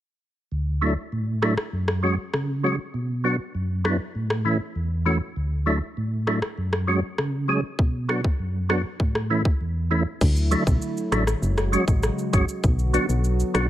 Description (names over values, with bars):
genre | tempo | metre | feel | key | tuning
dancehall | 99 BPM | 4/4 | straight | unclear | A4 = 440 Hz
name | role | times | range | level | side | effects
percussive tonewheel organ | accompaniment | 0.5-13.7 s | D2 to G#4 | -23 LUFS | equal | chorus vibrato, fast rotary speaker, sidechain pumping
island pop drum kit | drums | 1.4-13.7 s | crash cymbal, hi-hat, kick drum, rim click, shaker | -24 LUFS | equal | overdrive
hollow soft pad | sustained chords | 10.2-13.7 s | C#3 to F#4 | -29 LUFS | equal | chorus, sidechain pumping
solid FM bass | bass | 10.2-13.7 s | F#1 to D2 | -22 LUFS | equal | none
room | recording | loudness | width
digital ambience | none | -21 LUFS | side -13 dB against mid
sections
0.5-10.2 A section; 10.2-13.7 B section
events
none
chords
0.5 Dadd9; 1.7 F#sus2; 2.9 Bm; 4.2 A; 5.4 Dadd9; 6.6 F#sus2; 7.8 Bm; 9.0 A; 10.2 Dadd9; 11.4 F#sus2; 12.6 Bm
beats
| 0.52 1.12 1.73 2.33 | 2.94 3.55 4.15 4.76 | 5.36 5.97 6.58 7.18 | 7.79 8.39 9.00 9.61 | 10.21 10.82 11.43 12.03 | 12.64 13.24